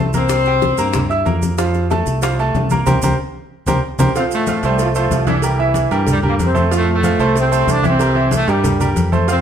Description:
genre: latin, salsa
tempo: 187 BPM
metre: 4/4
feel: straight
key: F major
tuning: A4 = 440 Hz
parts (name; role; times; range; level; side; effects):
- bright baby grand piano; accompaniment; 0.0-9.4 s; E3 to E6; -19 LUFS; right 3 dB; none
- fingered electric bass; bass; 0.0-9.4 s; C2 to G2; -18 LUFS; equal; none
- bongos and cowbell; percussion; 0.1-9.4 s; none; -26 LUFS; left 3 dB; none
- congas; percussion; 0.1-9.4 s; none; -22 LUFS; left 2 dB; none
- maracas; percussion; 0.1-9.4 s; none; -32 LUFS; right 6 dB; none
- clear horn section; melody; 0.2-1.1 s; C4 to C5; -18 LUFS; left 4 dB; none
- brilliant trombone section; melody; 4.2-9.4 s; G2 to F4; -19 LUFS; equal; none
room: wet studio reverb, RT60 0.9 s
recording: heard from further back in the room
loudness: -14 LUFS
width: side -8 dB against mid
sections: 0.0-4.2 A section; 4.2-9.4 B section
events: band accent 2.9-4.2; drum fill 3.4-4.2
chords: 0.3 C7; 1.6 F; 2.9 C5; 4.2 F; 5.4 C7; 6.7 F; 8.0 C7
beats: | 0.30 0.62 0.94 1.26 | 1.58 1.91 2.23 2.55 | 2.87 3.19 3.51 3.83 | 4.15 4.47 4.79 5.12 | 5.43 5.76 6.08 6.40 | 6.72 7.04 7.36 7.68 | 8.00 8.32 8.64 8.96 | 9.28

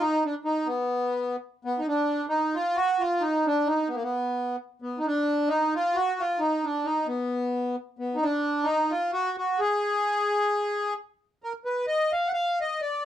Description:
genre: balkan folk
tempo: 264 BPM (eighths)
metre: 7/8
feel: straight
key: unclear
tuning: A4 = 439 Hz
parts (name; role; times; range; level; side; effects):
- accordion; solo; 0.0-13.0 s; Bb3 to Gb5; -24 LUFS; equal; none
room: light reverb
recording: dark, warm production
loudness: -24 LUFS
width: side -11 dB against mid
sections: 0.0-11.2 A section; 11.2-13.1 B section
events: accordion solo 11.2-13.1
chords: none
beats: | 0.02 0.25 0.48 0.71 0.94 1.17 1.40 | 1.63 1.85 2.08 2.31 2.54 2.77 3.00 | 3.23 3.46 3.68 3.91 4.14 4.37 4.60 | 4.82 5.05 5.28 5.51 5.74 5.96 6.19 | 6.42 6.65 6.87 7.10 7.33 7.56 7.78 | 8.01 8.24 8.47 8.69 8.92 9.15 9.38 | 9.60 9.83 10.06 10.29 10.51 10.74 10.97 | 11.19 11.42 11.65 11.88 12.10 12.33 12.56 | 12.78 13.01

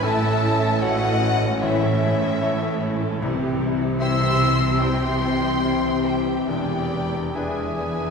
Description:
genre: cinematic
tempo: 69-76 BPM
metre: 4/4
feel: rubato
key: unclear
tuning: A4 = 439 Hz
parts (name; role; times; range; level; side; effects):
- warm symphonic violin section; melody; 0.0-8.1 s; E5 to E6; -30 LUFS; left 2 dB; none
- mellow clarinet; second line; 0.0-8.1 s; E4 to E5; -31 LUFS; right 2 dB; none
- mellow hollow concert flute; second line; 0.0-8.1 s; E5 to E6; -29 LUFS; left 2 dB; none
- warm symphonic violin section; second line; 0.0-8.1 s; C#5 to C6; -31 LUFS; left 3 dB; none
- bright baby grand piano; accompaniment; 0.0-8.1 s; E1 to C#5; -29 LUFS; left 1 dB; none
- rich symphonic viola section; accompaniment; 0.0-8.1 s; G3 to A4; -30 LUFS; right 1 dB; none
- concert harp; arpeggios; 0.0-8.1 s; A2 to G#5; -30 LUFS; left 1 dB; none
- warm symphonic cello section; bass; 0.0-8.1 s; E2 to C3; -28 LUFS; right 3 dB; none
- warm symphonic double bass section; bass; 0.0-8.1 s; E1 to C2; -28 LUFS; right 3 dB; none
- mellow French horn section; sustained chords; 0.1-8.1 s; E3 to D4; -26 LUFS; left 4 dB; none
room: wet concert hall reverb, RT60 2.0 s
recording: minimal, uncompressed stereo recording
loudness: -19 LUFS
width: side -5 dB against mid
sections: 0.0-8.1 A section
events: none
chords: 0.0 A; 3.2 C; 6.5 E7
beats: | 0.04 0.83 1.62 2.42 | 3.21 4.01 4.82 5.64 | 6.49 7.35

